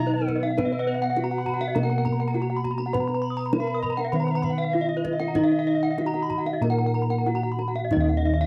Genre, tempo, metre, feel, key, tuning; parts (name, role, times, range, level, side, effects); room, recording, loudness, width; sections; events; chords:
Balinese gamelan; 91-102 BPM; 4/4; straight; Eb pelog; A4 = 442 Hz
gamelan-type bronze metallophone; melody; 0.0-8.5 s; Cb4 to Cb5; -33 LUFS; equal; cassette tape
alto recorder; second line; 0.0-6.6 s; Eb5 to Bb5; -36 LUFS; equal; cassette tape
gamelan-type bronze metallophone; accompaniment; 0.0-8.5 s; Eb3 to Cb4; -37 LUFS; equal; cassette tape
gamelan-type bronze metallophone; arpeggios; 0.0-8.3 s; Cb5 to Eb6; -35 LUFS; equal; cassette tape
gamelan-type bossed gongs; bass; 0.0-8.5 s; Eb2 to Cb5; -28 LUFS; equal
gamelan-type bronze metallophone; arpeggios; 0.1-8.5 s; Bb4 to Eb6; -33 LUFS; equal; cassette tape
kendang; percussion; 0.3-8.2 s; -35 LUFS; equal
moderate booth ambience, RT60 0.2 s; home recording on cassette; -25 LUFS; mono
0.0-7.9 A section